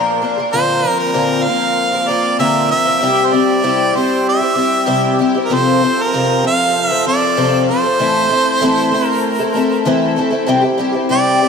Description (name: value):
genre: rock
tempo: 97 BPM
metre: 4/4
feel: straight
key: unclear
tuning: A4 = 440 Hz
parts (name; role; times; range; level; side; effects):
- picked twelve-string acoustic guitar; accompaniment; 0.0-11.5 s; F2 to Bb4; -15 LUFS; left 2 dB; analog chorus
- warm harmonica; melody; 0.5-11.5 s; Bb4 to F5; -16 LUFS; right 2 dB; ping-pong delay
room: wet huge ambient reverb, RT60 6.0 s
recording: dreamy mix soaked in reverb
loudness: -12 LUFS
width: side -6 dB against mid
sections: 0.5-10.5 A section; 10.5-11.5 B section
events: none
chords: 0.0 Bb; 0.5 Bbadd9; 3.0 C; 5.5 F; 8.0 Am; 10.5 C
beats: | 0.53 1.15 1.77 2.40 | 3.02 3.64 4.26 4.88 | 5.50 6.12 6.74 7.37 | 7.99 8.61 9.23 9.85 | 10.47 11.09